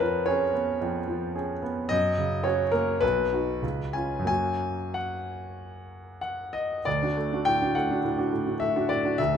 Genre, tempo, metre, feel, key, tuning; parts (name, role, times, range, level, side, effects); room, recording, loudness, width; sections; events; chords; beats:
classical, romantic character piece for solo piano; 88-112 BPM; 4/4; rubato; F# major; A4 = 440 Hz
clear grand piano; solo; 0.0-9.4 s; B1 to G#5; -25 LUFS; equal
moderate recital hall reverb, RT60 1.5 s; -24 LUFS; side -8 dB against mid
0.0-6.9 A section; 6.9-9.4 B section
0.0 C#7/E#; 1.9 F#; 3.0 B; 3.6 C#7; 4.3 F#; 6.9 D
0.28 0.82 1.36 | 1.90 2.45 3.02 3.62 | 4.28 4.96 5.59 6.23 | 6.86 7.46 8.03 8.60 | 9.19